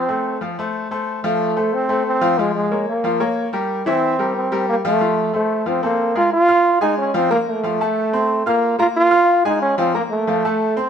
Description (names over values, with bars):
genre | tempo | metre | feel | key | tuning
latin | 183 BPM | 4/4 | straight | unclear | A4 = 438 Hz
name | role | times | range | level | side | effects
warm trombone | melody | 0.0-10.8 s | Ab3 to F4 | -17 LUFS | right 2 dB | none
bright upright piano | accompaniment | 0.0-10.9 s | E3 to F6 | -21 LUFS | left 2 dB | none
room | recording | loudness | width
moderate plate reverb, RT60 2.6 s | minimal, uncompressed stereo recording | -16 LUFS | side -8 dB against mid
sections
0.0-6.3 A section; 6.3-10.9 B section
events
none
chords
0.0 F; 2.4 Bbm; 3.7 C7; 5.0 F; 6.3 Bb5; 7.6 F; 9.0 Bb5; 10.3 F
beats
0.08 0.41 0.74 | 1.07 1.40 1.73 2.06 | 2.38 2.71 3.04 3.37 | 3.70 4.03 4.36 4.68 | 5.01 5.34 5.67 6.00 | 6.33 6.66 6.98 7.31 | 7.64 7.97 8.30 8.63 | 8.96 9.29 9.62 9.94 | 10.27 10.60